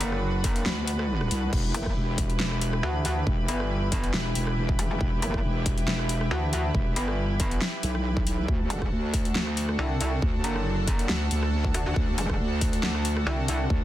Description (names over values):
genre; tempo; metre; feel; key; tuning
heavy wobble dubstep; 138 BPM; 4/4; swing 54% on 16ths, half-time; E minor; A4 = 442 Hz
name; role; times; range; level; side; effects
lush unison pad; sustained chords; 0.0-13.8 s; D3 to B4; -32 LUFS; equal; chorus, sidechain pumping
metallic wobble bass; bass; 0.0-13.7 s; E1 to D2; -26 LUFS; equal; chorus, overdrive
dubstep drum kit; drums; 0.0-13.6 s; crash cymbal, hi-hat, rim click, snare drum; -32 LUFS; left 1 dB; none
electronic kick drum; drums; 0.4-13.8 s; none; -28 LUFS; equal; none
wobble bass; bass; 0.7-13.8 s; E1 to D2; -27 LUFS; equal; chorus, overdrive
room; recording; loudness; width
digital ambience; dense, heavily limited modern master; -24 LUFS; side -13 dB against mid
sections
0.0-13.8 A section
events
kick drops out 1.1-1.5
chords
0.0 D; 1.5 Em; 8.5 D